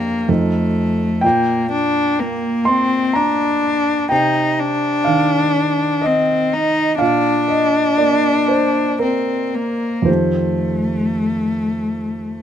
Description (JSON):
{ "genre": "classical, impressionist duo for cello and grand piano", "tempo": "55-64 BPM", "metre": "3/4", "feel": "rubato", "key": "C minor", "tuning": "A4 = 440 Hz", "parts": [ { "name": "rich cello", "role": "melody", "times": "0.0-12.4 s", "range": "A3 to Eb4", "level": "-17 LUFS", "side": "left 2 dB", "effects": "none" }, { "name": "warm grand piano", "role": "accompaniment", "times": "0.0-12.4 s", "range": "F2 to C6", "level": "-18 LUFS", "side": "right 2 dB", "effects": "none" } ], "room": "little or no reverb", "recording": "close, detailed microphones", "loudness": "-15 LUFS", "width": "side -9 dB against mid", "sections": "0.0-12.4 A section", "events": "none", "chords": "0.3 F7; 1.2 N.C.; 4.1 Cmadd9; 7.0 N.C.; 10.1 F9" }